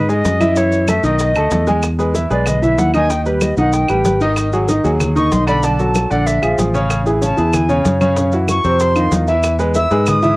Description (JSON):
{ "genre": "Afro-Cuban jazz", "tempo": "189 BPM", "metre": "4/4", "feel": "straight", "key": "E major", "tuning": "A4 = 438 Hz", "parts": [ { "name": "bright concert flute", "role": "melody", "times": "0.0-10.4 s", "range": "B4 to E6", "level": "-19 LUFS", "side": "equal", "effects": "none" }, { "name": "clear concert grand piano", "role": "accompaniment", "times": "0.0-10.4 s", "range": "C3 to A5", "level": "-16 LUFS", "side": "equal", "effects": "none" }, { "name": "fingered electric bass", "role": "bass", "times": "0.0-10.4 s", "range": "G#1 to G#2", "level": "-18 LUFS", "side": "equal", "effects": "none" }, { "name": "congas", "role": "percussion", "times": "0.1-10.4 s", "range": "none", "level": "-23 LUFS", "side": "left 1 dB", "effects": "none" }, { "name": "maracas", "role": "percussion", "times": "0.1-10.4 s", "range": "none", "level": "-32 LUFS", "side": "right 2 dB", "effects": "none" }, { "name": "bongos", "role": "percussion", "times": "0.3-10.2 s", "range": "none", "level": "-27 LUFS", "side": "left 2 dB", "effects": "none" }, { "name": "claves", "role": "percussion", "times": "0.4-10.2 s", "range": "none", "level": "-26 LUFS", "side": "right 2 dB", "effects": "none" } ], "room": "moderate booth ambience, RT60 0.2 s", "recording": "home recording on cassette", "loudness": "-13 LUFS", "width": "side -22 dB against mid", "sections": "0.0-1.8 A section; 1.8-10.4 B section", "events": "flute solo 1.8-10.4", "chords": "0.0 G#5; 0.6 F#m7; 1.2 B7#9; 1.8 Emaj7; 3.1 D#aug; 4.4 G#m7; 5.6 Bm7; 6.3 A#7; 6.9 Amaj7; 8.2 F#5; 8.8 F5; 9.4 Emaj7" }